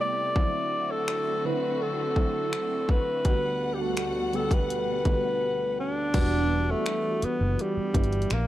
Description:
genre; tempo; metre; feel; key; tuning
contemporary R&B; 83 BPM; 4/4; straight; E minor; A4 = 440 Hz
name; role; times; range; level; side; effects
breathy alto saxophone; melody; 0.0-8.5 s; G3 to D5; -27 LUFS; left 1 dB; none
soft electric-piano-like synth keys; accompaniment; 0.0-8.3 s; C3 to A4; -31 LUFS; right 2 dB; chorus, phaser
clear studio string section; sustained chords; 0.0-6.1 s; D2 to F#5; -37 LUFS; left 1 dB; none
trap drum kit; drums; 0.4-8.5 s; crash cymbal, finger snaps, hi-hat, kick drum; -26 LUFS; equal; none
vintage muted fingered electric bass; bass; 6.1-8.5 s; E1 to A#1; -27 LUFS; equal; none
room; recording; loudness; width
light reverb, digital ambience; none; -24 LUFS; side -14 dB against mid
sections
0.0-6.1 A section; 6.1-8.5 B section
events
none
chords
0.4 D7; 3.3 Gmaj7/D; 6.1 Em7

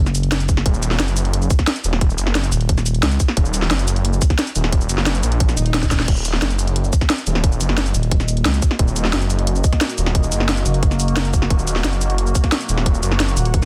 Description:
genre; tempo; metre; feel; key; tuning
dark technical drum and bass; 177 BPM; 4/4; straight; Eb minor; A4 = 438 Hz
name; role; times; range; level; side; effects
growling FM bass; bass; 0.0-3.2, 5.6-8.6, 10.7-13.7 s; Eb1 to Db2; -21 LUFS; equal; none
drum and bass drum kit; drums; 0.1-13.7 s; crash cymbal, hi-hat, shaker, snare drum; -24 LUFS; equal; none
electronic kick drum; drums; 0.5-13.6 s; none; -19 LUFS; equal; none
detuned saw bass; bass; 0.7-13.4 s; Eb1 to Bb1; -22 LUFS; equal; chorus, tube saturation
swell; sound effects; 5.5-6.1 s; none; -35 LUFS; equal; none
deep dark ambient pad; sustained chords; 7.7-13.7 s; Bb3 to Gb5; -30 LUFS; equal; chorus, built-in reverb, sidechain pumping
room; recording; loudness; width
little or no reverb; dense, heavily limited modern master; -18 LUFS; mono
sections
0.0-13.7 A section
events
swell 5.5-6.1; drum fill 5.8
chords
0.0 Ebm

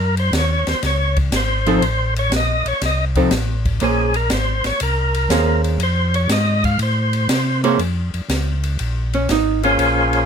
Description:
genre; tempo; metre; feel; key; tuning
soul jazz organ trio; 120 BPM; 4/4; swing 69% on 8ths; Bb minor; A4 = 441 Hz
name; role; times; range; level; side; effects
percussive tonewheel organ; melody; 0.0-10.3 s; Bb3 to F5; -20 LUFS; left 1 dB; overdrive, fast rotary speaker
mellow tonewheel organ; bass; 0.0-10.3 s; Ab1 to C3; -20 LUFS; equal; slow rotary speaker
open jazz drum kit; drums; 0.2-10.2 s; hi-hat, kick drum, ride cymbal, snare drum; -24 LUFS; left 1 dB; none
archtop guitar, miked and amplified; accompaniment; 1.7-10.3 s; F3 to C5; -18 LUFS; right 3 dB; none
room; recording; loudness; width
little or no reverb; close, detailed microphones; -16 LUFS; side -7 dB against mid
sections
0.0-7.8 A section; 7.8-10.3 A section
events
tonewheel organ solo 0.0-7.8; hollow-body jazz guitar solo 7.8-10.3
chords
0.0 Gb5; 1.8 F7 (rootless); 3.8 Bbm9; 5.8 F; 7.8 Bbm9

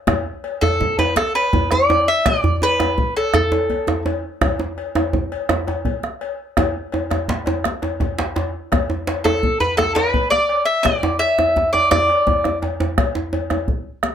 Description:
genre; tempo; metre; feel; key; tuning
west african traditional, West African drum ensemble; 112 BPM (dotted quarters); 12/8; straight; unclear; A4 = 440 Hz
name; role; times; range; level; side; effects
bombo; percussion; 0.1-14.1 s; none; -23 LUFS; right 2 dB; none
cowbell; percussion; 0.1-13.7 s; none; -28 LUFS; left 8 dB; none
djembe; percussion; 0.1-14.1 s; none; -26 LUFS; left 4 dB; none
djembe; percussion; 0.1-13.7 s; none; -22 LUFS; right 2 dB; none
mandolin; melody; 0.6-4.0, 9.2-12.6 s; A4 to E5; -17 LUFS; equal; none
room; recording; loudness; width
moderate small room ambience, RT60 0.5 s; none; -17 LUFS; side -9 dB against mid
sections
0.1-14.1 A section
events
speeding up 0.0-14.1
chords
none

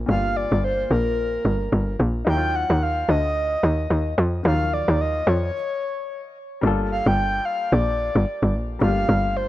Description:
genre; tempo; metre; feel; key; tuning
amapiano; 110 BPM; 4/4; swing 58% on 16ths; G minor; A4 = 439 Hz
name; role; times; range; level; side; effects
warm baby grand piano; accompaniment; 0.0-9.5 s; Bb2 to A4; -31 LUFS; left 4 dB; none
tight log drum bass; bass; 0.0-9.5 s; G1 to F2; -21 LUFS; equal; none
breathy flute-like synth lead; melody; 0.1-9.5 s; Bb4 to G5; -25 LUFS; equal; chorus, ping-pong delay
room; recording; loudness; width
little or no reverb; none; -19 LUFS; side -15 dB against mid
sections
0.0-6.6 A section; 6.6-9.5 B section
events
stop 5.5-6.6; drop 6.6-9.5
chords
0.0 Gm7; 2.3 Ebm9; 6.6 Gm9

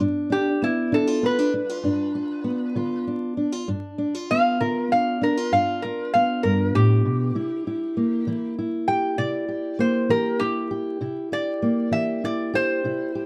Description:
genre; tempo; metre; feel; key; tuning
acoustic country blues, solo or duo; 65 BPM (dotted quarters); 12/8; straight; G mixolydian; A4 = 439 Hz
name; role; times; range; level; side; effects
fingerpicked steel-string acoustic guitar; accompaniment; 0.0-13.3 s; G2 to G4; -26 LUFS; equal; none
metal-body resonator slide guitar; melody; 0.3-13.3 s; E4 to G5; -26 LUFS; equal; none
room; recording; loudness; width
moderate studio reverb, RT60 0.5 s; dark, warm production, vinyl crackle; -23 LUFS; mono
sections
0.0-13.3 A section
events
resonator guitar played with a steel bar solo 0.0-13.3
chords
0.0 G7; 7.3 C7

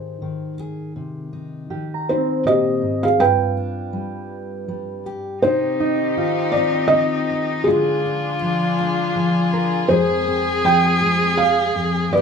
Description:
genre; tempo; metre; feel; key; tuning
acoustic folk-pop ballad; 81 BPM; 3/4; straight; C minor; A4 = 439 Hz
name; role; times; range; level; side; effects
felt-muted upright piano; melody; 0.0-12.2 s; Eb4 to G5; -19 LUFS; right 1 dB; none
fingerpicked steel-string acoustic guitar; accompaniment; 0.0-12.2 s; F2 to Ab4; -24 LUFS; left 2 dB; none
concert harp; arpeggios; 0.0-12.2 s; C4 to Bb5; -27 LUFS; right 3 dB; none
warm cello; second line; 5.4-12.2 s; Eb4 to Ab4; -22 LUFS; equal; none
warm chamber string section; sustained chords; 5.4-12.2 s; D3 to Ab4; -28 LUFS; left 4 dB; none
room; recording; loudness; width
moderate large studio reverb, RT60 0.9 s; band playing live in one room; -17 LUFS; side -6 dB against mid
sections
0.0-5.4 A section; 5.4-12.2 B section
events
none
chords
0.0 Ab; 1.0 Cm; 3.2 G; 5.4 Cm; 7.7 Ddim; 9.9 Fm

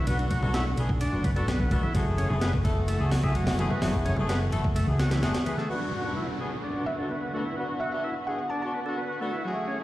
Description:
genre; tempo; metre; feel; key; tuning
breakbeat, breaks; 128 BPM; 4/4; straight; unclear; A4 = 437 Hz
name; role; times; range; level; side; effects
dark studio string section; sustained chords; 0.0-9.8 s; D3 to F#4; -34 LUFS; equal; sidechain pumping
combo organ; riff; 0.0-9.8 s; E3 to A4; -34 LUFS; equal; low-pass filter, tape echo
clear horn section; stabs; 0.1-9.8 s; F#2 to A4; -33 LUFS; left 1 dB; vintage 12-bit sampler grit, low-pass filter, tape echo
hollow-body short-scale fingered electric bass; bass; 0.1-5.3 s; F#1 to C#2; -27 LUFS; equal; none
breakbeat sampler-style drum kit; drums; 0.1-5.7 s; hi-hat, kick drum, ride cymbal, snare drum; -29 LUFS; equal; studio reverb
congas; percussion; 0.4-5.7 s; none; -35 LUFS; equal; none
downlifter; sound effects; 5.7-9.4 s; none; -38 LUFS; right 1 dB; none
glassy wavetable pluck; melody; 6.9-8.7 s; E5 to A5; -34 LUFS; equal; chorus, small speaker sound, tape echo
room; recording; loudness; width
moderate lush hall reverb, RT60 1.8 s, digital ambience; played on a big sound system in a bare room, large studio reverb, vinyl crackle, lossy compression artefacts; -25 LUFS; side -16 dB against mid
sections
0.0-5.7 A section; 5.7-9.8 B section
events
filter sweep on transistor combo organ 5.7-9.8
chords
0.0 Bm; 1.9 F#m7; 5.7 Bm

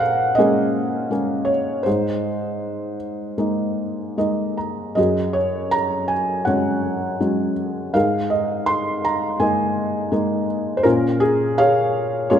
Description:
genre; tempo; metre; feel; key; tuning
classical, lyrical solo piano; 81 BPM; 4/4; rubato; unclear; A4 = 440 Hz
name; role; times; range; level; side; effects
felt-muted upright piano; solo; 0.0-12.4 s; Gb2 to C6; -18 LUFS; equal; none
room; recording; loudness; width
moderate concert hall reverb, RT60 2.1 s; none; -18 LUFS; side -9 dB against mid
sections
0.0-12.4 A section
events
felt piano fill 3.8-5.0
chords
0.0 Bbm7; 1.9 Absus2; 5.0 Gbsus2; 7.9 Absus2; 10.9 Bbm7

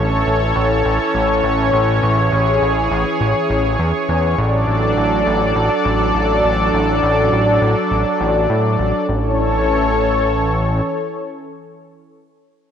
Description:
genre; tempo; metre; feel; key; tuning
synthwave; 102 BPM; 4/4; straight; A major; A4 = 440 Hz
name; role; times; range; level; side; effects
lush unison pad; sustained chords; 0.0-12.2 s; E3 to D5; -16 LUFS; equal; chorus, vintage 12-bit sampler grit
fat analog bass; bass; 0.0-10.8 s; A1 to A2; -19 LUFS; equal; none
room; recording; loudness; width
wet plate reverb, RT60 2.6 s; bright 1980s-style digital production; -14 LUFS; side -8 dB against mid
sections
0.0-9.1 A section; 9.1-11.4 B section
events
none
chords
0.0 A; 4.4 D/A; 9.1 A

